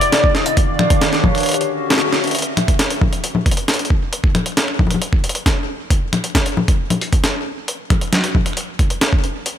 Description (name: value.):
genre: IDM.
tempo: 135 BPM.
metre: 4/4.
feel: straight.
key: unclear.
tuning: A4 = 443 Hz.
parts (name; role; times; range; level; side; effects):
warm velvety synth lead; melody; 0.0-1.9 s; Db5 to Eb5; -20 LUFS; equal; chorus, tape echo.
warbly tape-like pad; sustained chords; 0.0-2.4 s; C3 to F5; -22 LUFS; equal; chorus, built-in reverb.
jungle sampler-style drum kit; drums; 0.0-9.5 s; congas, finger snaps, hi-hat, snare drum; -18 LUFS; left 1 dB; overdrive, ping-pong delay.
electronic kick drum; drums; 0.2-9.2 s; none; -17 LUFS; equal; overdrive.
room: digital ambience.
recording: none.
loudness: -15 LUFS.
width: side -10 dB against mid.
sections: 0.0-2.3 A section; 2.3-9.6 B section.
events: kick drops out 1.5-2.3; band accent 1.9.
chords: 0.3 Ebmaj9; 1.5 Dmaj9; 2.3 N.C..